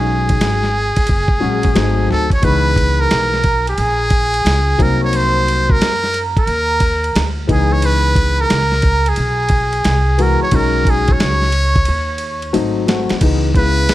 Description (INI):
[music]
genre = hip hop, jazz-hop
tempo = 89 BPM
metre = 4/4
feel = swing 64% on 16ths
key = C# dorian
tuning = A4 = 438 Hz
[part]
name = trumpet with metal mute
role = melody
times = 0.0-13.9 s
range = G#4 to C#5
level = -18 LUFS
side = equal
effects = none
[part]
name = vibraphone with soft mallets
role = second line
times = 0.0-12.5 s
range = G#5 to C#6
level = -24 LUFS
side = right 5 dB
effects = none
[part]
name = dark baby grand piano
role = accompaniment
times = 0.0-13.9 s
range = C#3 to F#4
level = -19 LUFS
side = left 5 dB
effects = none
[part]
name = upright bass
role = bass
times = 0.0-13.9 s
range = F#1 to Gb2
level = -18 LUFS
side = equal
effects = none
[part]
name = dusty soul sampler-style drum kit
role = drums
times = 0.3-13.9 s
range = crash cymbal, hi-hat, kick drum, ride cymbal, snare drum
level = -18 LUFS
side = equal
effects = none
[sound]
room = small room ambience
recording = none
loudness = -13 LUFS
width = side -15 dB against mid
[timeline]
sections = 0.0-2.4 A section; 2.4-13.2 B section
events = drum fill 11.9-13.2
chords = 0.0 B69; 1.8 G#7b9; 2.4 C#m7; 4.8 Cm7b5; 7.5 C#m7; 10.5 B69; 12.5 G#7b9; 13.2 C#m7